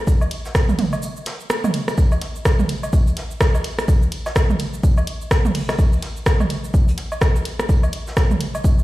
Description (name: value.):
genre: techno.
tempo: 126 BPM.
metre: 4/4.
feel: swing 59% on 16ths.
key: none.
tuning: none.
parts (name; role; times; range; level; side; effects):
electronic kick drum; drums; 0.1-8.8 s; none; -18 LUFS; equal; none.
jazz brush drum kit; drums; 0.1-8.8 s; hi-hat, snare drum, tambourine; -36 LUFS; equal; high-pass filter on hats, high-pass filter on snare, high-pass filter on perc, high-pass filter on room.
punchy analog drum machine; drums; 0.1-8.8 s; hi-hat, ride cymbal, rim click, shaker; -25 LUFS; equal; none.
electronic woodblock and toms; percussion; 0.2-8.6 s; none; -25 LUFS; right 2 dB; overdrive, digital delay.
room: light reverb, small room ambience.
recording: played on a big sound system in a bare room, stone room reverb.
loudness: -17 LUFS.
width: side -17 dB against mid.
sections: 0.0-8.8 A section.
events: break 1.0-2.0.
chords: none.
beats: | 0.07 0.55 1.02 1.50 | 1.98 2.45 2.93 3.41 | 3.88 4.36 4.83 5.31 | 5.79 6.26 6.74 7.21 | 7.69 8.17 8.64.